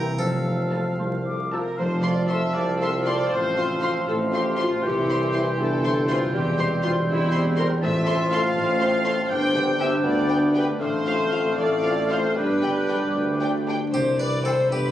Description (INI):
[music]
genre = cinematic, playful, whimsical film cue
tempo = 79 BPM (dotted quarters)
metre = 6/8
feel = straight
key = F major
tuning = A4 = 440 Hz
[part]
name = dark studio violin section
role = melody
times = 0.0-14.6 s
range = F5 to C6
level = -33 LUFS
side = left 2 dB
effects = none
[part]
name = harpsichord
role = melody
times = 0.0-0.9, 13.9-14.9 s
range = G4 to B4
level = -32 LUFS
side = equal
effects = none
[part]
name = mellow clarinet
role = second line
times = 0.0-13.7 s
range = C4 to F4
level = -31 LUFS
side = equal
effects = none
[part]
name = mellow concert flute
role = second line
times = 0.0-13.6 s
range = A5 to F6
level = -34 LUFS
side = left 1 dB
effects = none
[part]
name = warm chamber violin section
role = second line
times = 0.0-14.9 s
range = C4 to D5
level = -30 LUFS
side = left 2 dB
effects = none
[part]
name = mellow bassoon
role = accompaniment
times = 0.0-13.7 s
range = E3 to C4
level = -27 LUFS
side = equal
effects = none
[part]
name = warm studio viola section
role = accompaniment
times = 0.0-14.6 s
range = C4 to G5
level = -28 LUFS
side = equal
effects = none
[part]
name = mellow French horn section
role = sustained chords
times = 0.0-13.8 s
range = A3 to A4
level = -34 LUFS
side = left 2 dB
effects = none
[part]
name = concert harp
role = arpeggios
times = 0.0-14.9 s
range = G2 to C6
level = -29 LUFS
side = left 2 dB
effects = none
[part]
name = dark studio double bass section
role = bass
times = 0.0-14.9 s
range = E1 to D2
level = -35 LUFS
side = right 1 dB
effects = none
[part]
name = warm studio cello section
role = bass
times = 0.0-14.9 s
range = C2 to C3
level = -33 LUFS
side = right 2 dB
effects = none
[part]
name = warm tuba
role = bass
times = 0.0-14.9 s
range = E1 to D2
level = -29 LUFS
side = right 1 dB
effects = none
[part]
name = clear oboe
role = second line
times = 0.2-13.6 s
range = F5 to A5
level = -34 LUFS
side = right 1 dB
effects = none
[sound]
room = moderate concert hall reverb, RT60 1.7 s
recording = recorded on a phone in the room, club reverb, vinyl crackle, faint mains hum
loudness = -20 LUFS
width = side -12 dB against mid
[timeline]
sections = 0.0-1.8 A section; 1.8-13.9 A section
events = none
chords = 0.2 F; 3.3 F/A; 4.8 C; 6.3 C/E; 7.8 F/A; 9.3 G; 10.8 F/A; 12.4 G; 13.9 C